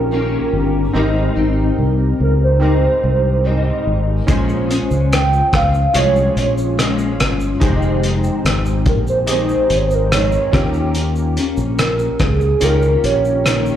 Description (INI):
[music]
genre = indie pop, bedroom pop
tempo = 72 BPM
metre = 4/4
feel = straight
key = Bb dorian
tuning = A4 = 440 Hz
[part]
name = warbly nostalgic lead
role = melody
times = 0.0-13.8 s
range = Ab4 to G5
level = -18 LUFS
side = right 2 dB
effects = analog chorus, slapback echo, analog delay
[part]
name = picked steel-string acoustic guitar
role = accompaniment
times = 0.0-13.8 s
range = F2 to G4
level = -21 LUFS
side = left 4 dB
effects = ensemble chorus, warbly pitch drift, slapback echo
[part]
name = warm analog keys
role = accompaniment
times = 0.0-13.8 s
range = C4 to Eb5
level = -25 LUFS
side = right 4 dB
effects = chorus, cassette tape, slapback echo
[part]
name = fingered electric bass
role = bass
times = 0.0-13.7 s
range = F1 to Eb2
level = -18 LUFS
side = equal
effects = none
[part]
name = cloth-damped thuddy drum kit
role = drums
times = 4.3-13.8 s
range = hi-hat, kick drum, rim click, shaker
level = -20 LUFS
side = equal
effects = none
[sound]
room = light reverb, small room ambience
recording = live gig heard through the venue's PA, club reverb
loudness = -14 LUFS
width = side -10 dB against mid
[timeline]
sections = 0.0-13.8 A section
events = none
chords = 0.0 Eb7; 0.9 Abmaj7; 4.3 Bbm7; 7.6 Fm7; 10.5 Eb7